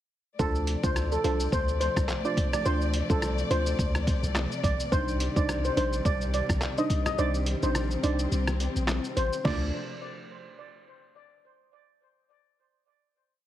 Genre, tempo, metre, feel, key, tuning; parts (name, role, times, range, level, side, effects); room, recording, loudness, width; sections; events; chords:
dancehall; 106 BPM; 4/4; swing 56% on 16ths; D phrygian; A4 = 440 Hz
steel pan; melody; 0.4-9.7 s; A4 to Eb5; -31 LUFS; equal; ping-pong delay
soft round pluck; accompaniment; 0.4-9.7 s; D4 to C5; -33 LUFS; right 3 dB; chorus
warm studio string section; sustained chords; 0.4-9.7 s; C3 to D5; -35 LUFS; left 2 dB; sidechain pumping
punchy sub bass; bass; 0.4-9.7 s; A1 to D2; -29 LUFS; equal
trip hop sampler-style drum kit; drums; 0.4-9.6 s; crash cymbal, handclaps, hi-hat, kick drum, rim click, shaker, snare drum; -30 LUFS; equal
light reverb, digital ambience; heavily compressed radio sound; -25 LUFS; side -12 dB against mid
0.4-9.4 chorus; 9.4-11.7 final chord
kick muted 7.2-9.4
0.4 Dm7; 4.9 Cmadd9; 9.4 Dm7